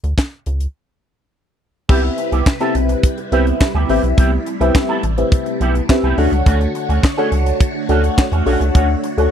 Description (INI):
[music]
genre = early-eighties boogie funk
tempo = 105 BPM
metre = 4/4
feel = straight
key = unclear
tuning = A4 = 440 Hz
[part]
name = rubbery square bass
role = bass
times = 0.0-9.3 s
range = A1 to E2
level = -17 LUFS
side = equal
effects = none
[part]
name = tight funk drum kit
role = drums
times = 0.0-9.3 s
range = crash cymbal, handclaps, hi-hat, kick drum, snare drum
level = -14 LUFS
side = equal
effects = none
[part]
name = FM electric piano with soft pad layer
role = accompaniment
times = 1.9-9.3 s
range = C4 to F#5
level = -19 LUFS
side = left 2 dB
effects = chorus, phaser
[part]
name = phased string machine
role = sustained chords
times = 1.9-9.3 s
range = C3 to C#5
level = -24 LUFS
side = equal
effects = ensemble chorus, phaser
[part]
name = electric guitar with an envelope filter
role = riff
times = 1.9-9.3 s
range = A3 to A4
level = -23 LUFS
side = right 4 dB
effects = ensemble chorus
[sound]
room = little or no reverb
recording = dry, close 1970s-style studio recording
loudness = -14 LUFS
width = side -8 dB against mid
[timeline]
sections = 0.0-1.9 A section; 1.9-9.3 B section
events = break 0.7-1.9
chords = 0.0 Bmadd9 (rootless); 1.9 Cmaj7; 6.2 Dmaj7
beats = 0.18 0.75 1.32 | 1.89 2.46 3.04 3.61 | 4.18 4.75 5.32 5.89 | 6.46 7.04 7.61 8.18 | 8.75